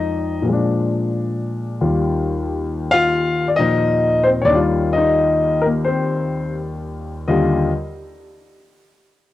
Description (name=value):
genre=solo jazz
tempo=89 BPM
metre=4/4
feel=swing 67% on 8ths, rubato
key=Eb major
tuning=A4 = 440 Hz
part: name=warm grand piano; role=solo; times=0.0-7.7 s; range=Eb2 to F5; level=-16 LUFS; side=left 2 dB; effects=none
room=light reverb, studio ambience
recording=home recording on cassette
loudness=-16 LUFS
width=side -14 dB against mid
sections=0.0-7.3 A section; 7.3-9.3 B section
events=none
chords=0.5 Bb7; 1.8 Ebadd9; 7.3 Ebmaj9